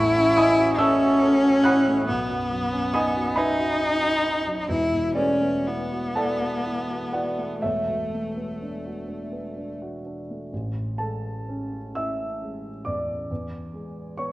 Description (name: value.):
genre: classical, impressionist duo for cello and grand piano.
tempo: 40-47 BPM (dotted quarters).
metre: 6/8.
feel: rubato.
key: A major.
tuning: A4 = 440 Hz.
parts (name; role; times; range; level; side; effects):
clear cello; melody; 0.0-9.7 s; A3 to E4; -22 LUFS; left 1 dB; none.
dark concert grand piano; accompaniment; 0.0-14.3 s; E1 to F#6; -26 LUFS; right 1 dB; none.
room: wet recital hall reverb, RT60 1.4 s.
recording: worn, warbling old tape, cassette tape, warbly pitch drift.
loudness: -21 LUFS.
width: side -18 dB against mid.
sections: 0.0-10.5 A section; 10.5-14.3 B section.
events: none.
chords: 0.0 A6; 2.1 Badd9; 4.7 E11; 7.6 E9sus4; 10.5 Amaj7; 13.3 E7.